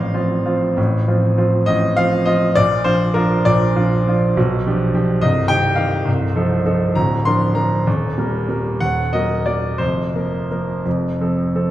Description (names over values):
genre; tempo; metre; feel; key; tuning
classical, romantic character piece for solo piano; 57-72 BPM (dotted quarters); 6/8; rubato; unclear; A4 = 440 Hz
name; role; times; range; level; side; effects
clear grand piano; solo; 0.0-11.7 s; C1 to C6; -15 LUFS; equal; none
room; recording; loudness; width
wet recital hall reverb, RT60 1.6 s; heard from further back in the room; -15 LUFS; side -14 dB against mid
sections
0.0-11.7 A section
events
none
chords
0.0 F/A; 2.6 Bb; 4.4 G7/B; 5.2 Cm; 6.1 F7/C; 7.0 Bb/D; 7.9 Eb; 8.8 Ebm; 9.8 Fsus4; 10.8 F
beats
| 0.78 1.68 | 2.58 3.46 | 4.37 5.23 | 6.08 6.96 | 7.86 8.81 | 9.80 10.85